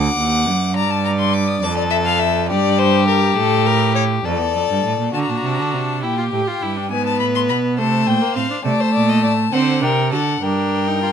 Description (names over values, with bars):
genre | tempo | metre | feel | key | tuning
classical, baroque-style fugue for string quartet | 68 BPM (dotted quarters) | 6/8 | straight | G minor | A4 = 439 Hz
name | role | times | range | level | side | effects
rich violin | melody | 0.0-11.1 s | A4 to Eb6 | -21 LUFS | left 8 dB | none
warm violin | second line | 0.0-11.1 s | F#4 to F#5 | -22 LUFS | left 5 dB | none
rich cello | bass | 0.0-11.1 s | D2 to D3 | -20 LUFS | right 5 dB | none
rich viola | accompaniment | 5.1-11.1 s | A3 to G4 | -20 LUFS | right 2 dB | none
room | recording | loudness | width
light reverb | none | -15 LUFS | side -8 dB against mid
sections
0.0-5.1 A section; 5.1-11.1 B section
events
none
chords
0.0 D; 0.8 Gm; 1.6 Dm/F; 2.5 Gm; 3.4 A7(no3); 4.2 Dm; 5.1 D7; 6.0 Gm; 6.9 Abm; 7.8 Am; 8.7 N.C.; 9.5 D7; 10.4 Gm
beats
0.76 | 1.63 2.50 | 3.37 4.25 | 5.14 6.03 | 6.91 7.78 | 8.65 9.53 | 10.42